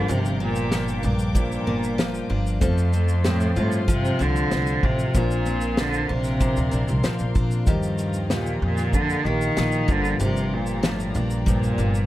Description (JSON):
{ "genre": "acoustic pop", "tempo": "95 BPM", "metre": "4/4", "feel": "straight", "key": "G minor", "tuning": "A4 = 441 Hz", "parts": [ { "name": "rich cello", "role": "melody", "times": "0.0-12.1 s", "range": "F2 to Eb3", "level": "-25 LUFS", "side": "equal", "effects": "none" }, { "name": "felt-muted upright piano", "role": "accompaniment", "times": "0.0-12.1 s", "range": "G3 to Eb5", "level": "-37 LUFS", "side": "left 6 dB", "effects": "none" }, { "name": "picked steel-string acoustic guitar", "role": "accompaniment", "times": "0.0-12.1 s", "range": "G2 to Bb4", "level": "-28 LUFS", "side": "left 2 dB", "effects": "none" }, { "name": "warm studio string section", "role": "sustained chords", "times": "0.0-12.1 s", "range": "G4 to D6", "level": "-37 LUFS", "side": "left 2 dB", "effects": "none" }, { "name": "nylon-string guitar", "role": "arpeggios", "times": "0.0-12.1 s", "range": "F3 to G4", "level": "-33 LUFS", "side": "right 5 dB", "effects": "none" }, { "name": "upright bass", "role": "bass", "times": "0.0-12.1 s", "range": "G1 to Bb2", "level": "-25 LUFS", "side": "equal", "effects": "none" }, { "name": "unplugged drum kit", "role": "drums", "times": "0.1-12.1 s", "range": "kick drum, shaker, snare drum", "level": "-25 LUFS", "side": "equal", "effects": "none" } ], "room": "little or no reverb", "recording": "dark, warm production", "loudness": "-20 LUFS", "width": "side -15 dB against mid", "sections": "0.0-12.1 A section", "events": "none", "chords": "0.0 Gm7; 2.6 F; 5.1 Bbadd9; 7.7 Ebadd9; 9.9 Gm7", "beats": "| 0.09 0.72 1.35 1.99 | 2.62 3.25 3.88 4.51 | 5.15 5.78 6.41 7.04 | 7.67 8.30 8.94 9.57 | 10.20 10.83 11.46" }